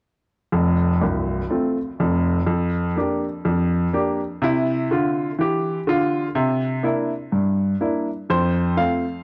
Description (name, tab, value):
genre	jazz, stride piano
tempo	124 BPM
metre	4/4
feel	swing 62% on 8ths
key	F major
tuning	A4 = 439 Hz
part	clear baby grand piano	solo	0.5-9.2 s	C1 to F5	-22 LUFS	equal	cassette tape, analog delay
room	moderate studio reverb, RT60 0.5 s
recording	home recording on cassette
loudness	-22 LUFS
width	mono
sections	0.5-8.3 A section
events	none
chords	0.5 F; 2.5 Gm7/F; 4.4 F5/C; 6.3 C9; 8.3 F